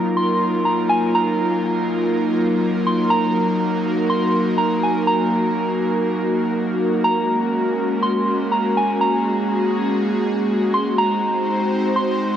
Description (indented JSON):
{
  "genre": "hip hop",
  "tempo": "122 BPM",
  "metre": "4/4",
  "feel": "half-time",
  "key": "Eb dorian",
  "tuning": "A4 = 440 Hz",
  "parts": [
    { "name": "soft synth bell", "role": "melody", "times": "0.0-12.4 s", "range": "Ab5 to C6", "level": "-22 LUFS", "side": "right 1 dB", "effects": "chorus, low-pass filter, tape echo" },
    { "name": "airy breathy pad", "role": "sustained chords", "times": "0.0-12.4 s", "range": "Gb3 to C5", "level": "-19 LUFS", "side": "equal", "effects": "chorus" }
  ],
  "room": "moderate shimmer reverb, RT60 6.3 s",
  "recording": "worn, warbling old tape, cassette tape, warbly pitch drift",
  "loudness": "-17 LUFS",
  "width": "side -9 dB against mid",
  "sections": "0.0-12.4 A section",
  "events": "none",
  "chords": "0.0 Ebmadd9; 7.0 Gbadd9; 11.0 Ab7",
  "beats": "0.16 0.65 | 1.14 1.64 2.13 2.62 | 3.11 3.60 4.09 4.59 | 5.08 5.57 6.06 6.55 | 7.05 7.54 8.03 8.52 | 9.01 9.51 10.00 10.49 | 10.98 11.47 11.96"
}